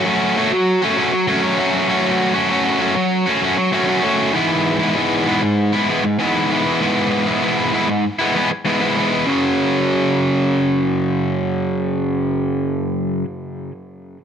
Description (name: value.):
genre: rock.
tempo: 98 BPM.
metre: 4/4.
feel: straight.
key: F# minor.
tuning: A4 = 440 Hz.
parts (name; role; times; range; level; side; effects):
cranked stack guitar; solo; 0.0-13.2 s; F#2 to F#4; -16 LUFS; equal; overdrive, digital delay.
room: moderate large studio reverb, RT60 0.8 s.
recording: none.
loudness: -15 LUFS.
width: side -8 dB against mid.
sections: 0.0-9.3 A section; 9.3-11.7 B section.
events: none.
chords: 0.0 F#m; 4.3 E/G#; 9.3 F#5.